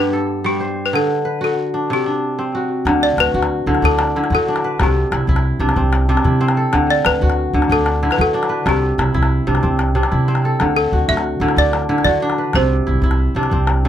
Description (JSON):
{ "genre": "west african traditional, West African string and xylophone music", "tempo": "124 BPM (dotted quarters)", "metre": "12/8", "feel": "straight", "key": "unclear", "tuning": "A4 = 440 Hz", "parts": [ { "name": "balafon", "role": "melody", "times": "0.0-12.9 s", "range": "G4 to E5", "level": "-19 LUFS", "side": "equal", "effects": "none" }, { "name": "kora", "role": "arpeggios", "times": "0.0-13.9 s", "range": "G2 to E5", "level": "-18 LUFS", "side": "equal", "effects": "slapback echo" }, { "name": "upright bass", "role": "bass", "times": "2.9-13.9 s", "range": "C2 to D3", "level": "-18 LUFS", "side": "equal", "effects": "none" }, { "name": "calabash", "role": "percussion", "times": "2.9-13.9 s", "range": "none", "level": "-22 LUFS", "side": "left 2 dB", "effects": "none" } ], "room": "little or no reverb", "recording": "close, detailed microphones", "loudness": "-14 LUFS", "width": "side -10 dB against mid", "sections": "0.0-2.9 A section; 2.9-13.9 B section", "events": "none", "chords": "0.0 G; 0.9 D; 1.9 C5; 2.9 D; 4.8 C; 6.7 D; 8.7 C; 10.6 D; 12.5 C", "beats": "0.45 | 0.93 1.42 1.90 2.38 | 2.87 3.35 3.83 4.32 | 4.80 5.28 5.76 6.25 | 6.73 7.21 7.70 8.18 | 8.66 9.15 9.63 10.12 | 10.60 11.09 11.57 12.06 | 12.55 13.03 13.52" }